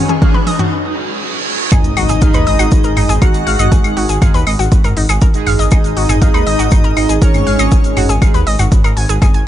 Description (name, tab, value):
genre	melodic techno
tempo	120 BPM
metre	4/4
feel	straight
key	G# minor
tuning	A4 = 440 Hz
part	soft supersaw	melody	0.0-8.1 s	C#4 to F#4	-22 LUFS	equal	sidechain pumping, tape echo
part	airy dreamy lead	second line	0.0-8.1 s	C#5 to F#5	-26 LUFS	left 2 dB	chorus, sidechain pumping, tape echo
part	analog pluck	arpeggios	0.0-9.4 s	D#4 to G#5	-20 LUFS	equal	chorus, sidechain pumping, tape echo
part	analog synth brass	stabs	0.0-8.4 s	G#3 to G#4	-23 LUFS	right 5 dB	chorus, sidechain pumping, tape echo
part	riser, reverse cymbal and impact	sound effects	0.0-3.7 s	none	-21 LUFS	right 1 dB	none
part	granular cloud pad	texture	0.0-0.7 s	G#3 to C#5	-30 LUFS	left 1 dB	built-in reverb, sidechain pumping
part	deep house drum kit	drums	0.1-9.4 s	claves, hi-hat, toms	-19 LUFS	left 2 dB	sidechain pumping on hats, sidechain pumping on toms, sidechain pumping on perc
part	electronic kick drum	drums	0.2-9.3 s	none	-12 LUFS	equal	none
part	dark detuned saw bass	bass	1.7-9.4 s	G#1 to D#2	-16 LUFS	equal	sidechain pumping
part	tube shaker	percussion	1.7-9.4 s	none	-28 LUFS	left 3 dB	none
room	little or no reverb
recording	dark, warm production, nothing above 10.6 kHz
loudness	-10 LUFS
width	side -12 dB against mid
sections	0.0-1.7 A section; 1.7-9.5 B section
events	build-up 0.0-1.7; drum fill 0.0-0.7; riser 0.0-0.7; break 0.7-1.7; reverse cymbal 0.7-1.7; drop 1.7-9.5; impact 1.7-3.7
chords	0.0 G#m; 1.7 G#5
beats	0.22 0.72 1.22 | 1.72 2.22 2.72 3.22 | 3.72 4.22 4.72 5.22 | 5.72 6.22 6.72 7.22 | 7.72 8.22 8.72 9.22